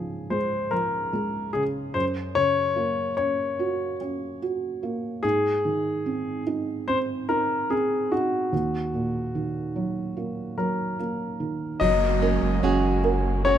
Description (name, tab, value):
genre	pop ballad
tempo	73 BPM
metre	4/4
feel	straight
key	unclear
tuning	A4 = 440 Hz
part	warm concert grand piano	melody	0.0-13.6 s	Gb4 to Eb5	-26 LUFS	left 3 dB	none
part	felt-muted upright piano	accompaniment	0.0-13.6 s	Db2 to Bb4	-28 LUFS	right 3 dB	none
part	warm studio string section	sustained chords	11.8-13.6 s	Gb3 to Bb3	-32 LUFS	right 1 dB	none
part	fingerpicked plugged-in steel-string acoustic guitar	arpeggios	11.8-13.6 s	Gb3 to Ab4	-25 LUFS	right 5 dB	none
part	warm sub bass	bass	11.8-13.6 s	Gb1	-25 LUFS	equal	none
part	downlifter	sound effects	11.8-13.6 s	none	-32 LUFS	left 1 dB	none
room	light reverb, small room ambience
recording	rough home demo mix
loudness	-23 LUFS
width	side -10 dB against mid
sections	0.0-11.8 A section; 11.8-13.6 B section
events	none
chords	0.0 Db; 1.9 Gb; 5.2 Ab; 8.5 Ebm; 11.8 Gbadd9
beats	0.31 1.13 | 1.95 2.77 3.59 4.42 | 5.24 6.06 6.88 7.70 | 8.53 9.35 10.17 10.99 | 11.81 12.63 13.46